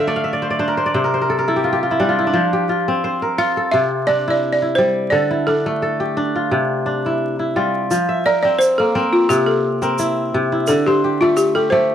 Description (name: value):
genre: west african traditional, West African string and xylophone music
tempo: 86 BPM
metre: 4/4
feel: straight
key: F major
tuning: A4 = 441 Hz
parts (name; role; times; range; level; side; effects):
- balafon; melody; 0.0-11.9 s; F4 to F5; -17 LUFS; equal; none
- kora; arpeggios; 0.0-11.9 s; C3 to G5; -17 LUFS; equal; none
- tube shaker; percussion; 7.9-11.5 s; none; -32 LUFS; right 7 dB; none
room: studio reverb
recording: dry, close 1970s-style studio recording, vinyl crackle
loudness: -15 LUFS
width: side -9 dB against mid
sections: 0.0-7.9 A section; 7.9-11.9 B section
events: kora fill 0.0-2.3; balafon solo 7.9-11.9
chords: 0.0 Dm; 0.9 C; 2.3 F; 3.7 C; 5.1 D5; 6.5 C; 7.9 F5; 9.3 C; 10.7 D5